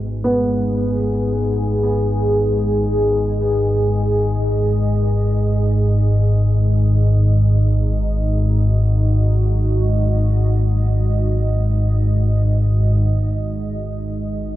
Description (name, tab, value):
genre	dark ambient drone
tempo	free time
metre	none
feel	none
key	G# minor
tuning	A4 = 439 Hz
part	deep dark ambient pad	sustained chords	0.0-14.6 s	G#3 to D#5	-22 LUFS	right 1 dB	chorus, built-in reverb
part	dark grand piano	arpeggios	0.0-13.0 s	B2 to B3	-24 LUFS	right 1 dB	tape echo
part	deep rumbling drone	drone	0.0-14.6 s	G#1 to G#2	-16 LUFS	equal	built-in reverb
room	wet huge ambient reverb, RT60 8.2 s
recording	worn, warbling old tape, cassette tape, warbly pitch drift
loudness	-15 LUFS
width	side -15 dB against mid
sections	0.0-13.0 A section; 13.0-14.6 B section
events	fade-out on ambient pad 0.0-13.0; fade-out on grand piano 0.0-13.0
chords	0.0 G#5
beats	free time